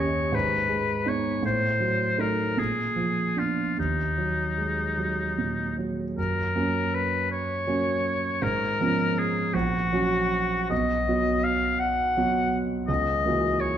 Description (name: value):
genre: classical, romantic duo for oboe and grand piano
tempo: 49-56 BPM (dotted quarters)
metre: 6/8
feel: rubato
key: Eb minor, F# major from 6.2 s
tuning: A4 = 440 Hz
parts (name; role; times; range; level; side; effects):
- clear oboe; melody; 0.0-13.8 s; Eb4 to F#5; -26 LUFS; left 3 dB; none
- warm concert grand piano; accompaniment; 0.0-13.8 s; A#1 to G4; -26 LUFS; right 2 dB; none
room: wet recital hall reverb, RT60 1.6 s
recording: dark, warm production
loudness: -23 LUFS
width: side -10 dB against mid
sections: 0.0-6.2 A section; 6.2-13.8 B section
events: none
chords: 0.3 Abm; 1.4 Adim7; 2.6 Bb7b9; 3.8 Ebm; 6.2 F#; 8.4 C#7/G#; 9.5 F#/A#; 10.7 B; 12.9 F#7/C#